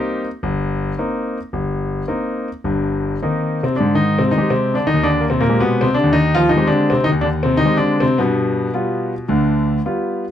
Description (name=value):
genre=solo jazz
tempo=109 BPM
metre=4/4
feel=swing 67% on 8ths, rubato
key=C minor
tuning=A4 = 438 Hz
part: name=clear grand piano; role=solo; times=0.0-10.2 s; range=G1 to G4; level=-16 LUFS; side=left 1 dB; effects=none
room=light reverb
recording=close, detailed microphones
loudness=-16 LUFS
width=side -10 dB against mid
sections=0.0-10.3 A section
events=none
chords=0.0 Cm7; 3.8 Abmaj7; 8.2 G7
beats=0.43 0.98 | 1.53 2.08 2.65 3.23 | 3.81 4.37 4.94 5.49 | 6.03 6.57 7.11 7.65 | 8.19 8.74 9.29 9.84